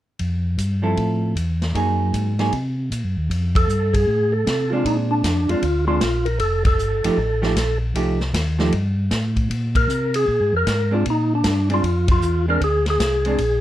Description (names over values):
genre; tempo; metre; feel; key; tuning
soul jazz organ trio; 155 BPM; 4/4; swing 65% on 8ths; F major; A4 = 440 Hz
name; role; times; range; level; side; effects
mellow tonewheel organ; bass; 0.2-13.6 s; F1 to C3; -21 LUFS; equal; chorus vibrato, slow rotary speaker
vintage drum kit; drums; 0.2-13.5 s; hi-hat, kick drum, ride cymbal, snare drum; -25 LUFS; equal; none
vintage hollow-body jazz guitar; accompaniment; 0.8-13.4 s; F3 to A4; -23 LUFS; right 3 dB; none
percussive tonewheel organ; melody; 3.6-13.6 s; D4 to Bb4; -21 LUFS; equal; fast rotary speaker
room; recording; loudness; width
light reverb; none; -18 LUFS; side -13 dB against mid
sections
0.2-3.3 A section; 3.3-13.6 B section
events
band accent 3.5, 6.6, 9.7, 12.0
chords
0.2 Fmaj7; 1.7 Gb69; 3.3 Fadd9; 4.8 Bb9; 6.4 F9; 9.5 Bb9